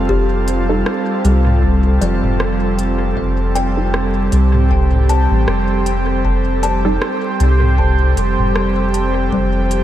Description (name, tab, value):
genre	ambient dub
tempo	78 BPM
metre	4/4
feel	swing 57% on 16ths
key	F mixolydian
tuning	A4 = 440 Hz
part	airy breathy pad	sustained chords	0.0-9.8 s	F3 to A4	-19 LUFS	right 2 dB	chorus
part	filtered dub chord stab	stabs	0.0-7.1 s	G3 to A4	-25 LUFS	right 3 dB	none
part	soft dub sub bass	bass	0.0-9.8 s	F1 to C2	-16 LUFS	equal	none
part	bubbling stepped-filter texture	texture	0.0-9.8 s	C5	-26 LUFS	equal	chorus, built-in reverb
part	kalimba	arpeggios	0.1-9.8 s	F3 to A5	-24 LUFS	left 4 dB	tape echo
part	electronic kick drum	drums	0.1-9.5 s	none	-22 LUFS	equal	overdrive
part	organic electronic drum kit	drums	0.5-9.8 s	hi-hat, rim click, toms	-25 LUFS	equal	dub echo
room	light reverb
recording	vinyl crackle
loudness	-13 LUFS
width	side -12 dB against mid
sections	0.0-9.8 A section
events	none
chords	0.0 F9; 9.3 C5/F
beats	| 0.09 0.86 1.63 2.40 | 3.17 3.94 4.71 5.48 | 6.25 7.02 7.79 8.55 | 9.32